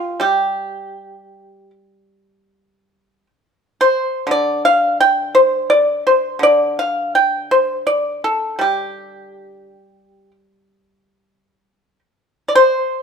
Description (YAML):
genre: chinese traditional, Chinese solo plucked strings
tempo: 50-60 BPM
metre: 4/4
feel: rubato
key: G shang mode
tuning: A4 = 440 Hz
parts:
  - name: pipa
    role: solo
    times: 0.0-13.0 s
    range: D3 to G5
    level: -14 LUFS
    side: equal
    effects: none
room: moderate stone room reverb, RT60 1.1 s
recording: band playing live in one room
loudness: -14 LUFS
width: side -6 dB against mid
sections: 0.0-10.9 A section; 10.9-13.0 B section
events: none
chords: none